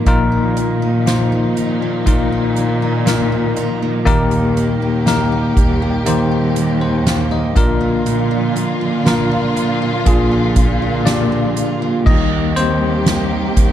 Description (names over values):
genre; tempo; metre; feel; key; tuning
pop ballad; 60 BPM; 4/4; straight; Eb major; A4 = 442 Hz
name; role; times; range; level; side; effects
bell-like tine electric piano; accompaniment; 0.0-13.7 s; Bb2 to F5; -18 LUFS; left 4 dB; fast stereo tremolo
warm studio string section; sustained chords; 0.0-13.7 s; D3 to G4; -23 LUFS; right 2 dB; none
picked steel-string acoustic guitar; arpeggios; 0.0-13.7 s; Bb2 to G4; -24 LUFS; right 11 dB; none
dark studio cello section; bass; 0.0-13.7 s; Eb2 to Bb2; -21 LUFS; right 1 dB; none
soft-mallet drum kit; drums; 0.1-13.7 s; crash cymbal, hi-hat, kick drum, snare drum; -18 LUFS; right 1 dB; none
room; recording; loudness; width
studio ambience; dark, warm production; -13 LUFS; side -11 dB against mid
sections
0.0-12.1 A section; 12.1-13.7 B section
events
tine electric piano solo 12.1-13.7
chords
0.0 Bbsus4; 4.1 Eb; 7.6 Bb; 12.1 Eb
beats
| 0.07 1.07 2.07 3.07 | 4.07 5.07 6.07 7.07 | 8.07 9.07 10.07 11.07 | 12.07 13.07